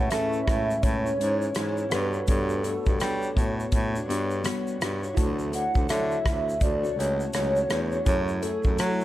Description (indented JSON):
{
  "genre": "indie pop, bedroom pop",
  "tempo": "83 BPM",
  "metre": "4/4",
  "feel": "swing 60% on 16ths",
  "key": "unclear",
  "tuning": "A4 = 440 Hz",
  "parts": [
    { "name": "hollow clarinet-like synth lead", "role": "melody", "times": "0.0-9.0 s", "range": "A4 to F#5", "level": "-28 LUFS", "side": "right 1 dB", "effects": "analog chorus, slapback echo" },
    { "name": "fingerpicked plugged-in steel-string acoustic guitar", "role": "accompaniment", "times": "0.0-9.0 s", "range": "A2 to C#5", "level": "-32 LUFS", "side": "left 3 dB", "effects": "lush chorus, vibrato effect" },
    { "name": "soft electric-piano-like synth keys", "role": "accompaniment", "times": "0.0-9.0 s", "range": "E4 to G#5", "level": "-37 LUFS", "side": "right 4 dB", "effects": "chorus, phaser" },
    { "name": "breathy baritone saxophone", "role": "bass", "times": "0.0-9.0 s", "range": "C#2 to A3", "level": "-29 LUFS", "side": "equal", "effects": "none" },
    { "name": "loose indie drum kit", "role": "drums", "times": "0.1-9.0 s", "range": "hi-hat, kick drum, rim click, shaker", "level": "-27 LUFS", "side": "equal", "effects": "none" }
  ],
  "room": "small room ambience",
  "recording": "none",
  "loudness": "-23 LUFS",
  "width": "side -14 dB against mid",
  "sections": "0.0-9.0 A section",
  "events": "none",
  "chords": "0.0 Amaj7; 1.9 Gmaj9#11; 5.2 Dmaj7; 8.1 F#m9"
}